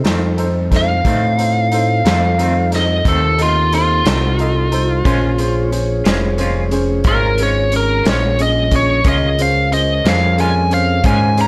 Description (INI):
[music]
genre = slow blues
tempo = 60 BPM (dotted quarters)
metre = 12/8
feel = straight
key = Bb minor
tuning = A4 = 440 Hz
[part]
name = clear baby grand piano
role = accompaniment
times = 0.0-11.5 s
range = Db4 to Eb5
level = -25 LUFS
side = equal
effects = none
[part]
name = mellow tonewheel organ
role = sustained chords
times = 0.0-11.5 s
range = C4 to Db5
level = -28 LUFS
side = equal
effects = slow rotary speaker
[part]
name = growling FM bass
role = bass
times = 0.0-11.5 s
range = F1 to A2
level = -20 LUFS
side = equal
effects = none
[part]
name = raw garage drum kit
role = drums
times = 0.0-11.5 s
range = hi-hat, kick drum, snare drum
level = -22 LUFS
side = equal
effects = none
[part]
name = clean electric guitar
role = accompaniment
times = 0.1-11.5 s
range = F2 to F4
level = -27 LUFS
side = equal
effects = tremolo
[part]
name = biting lead guitar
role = melody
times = 0.8-11.5 s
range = F4 to Bb5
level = -19 LUFS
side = equal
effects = overdrive
[sound]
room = light reverb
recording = none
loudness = -15 LUFS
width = mono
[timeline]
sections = 0.0-11.5 A section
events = lead electric guitar solo 0.0-11.5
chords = 0.0 F7; 5.1 Bbm7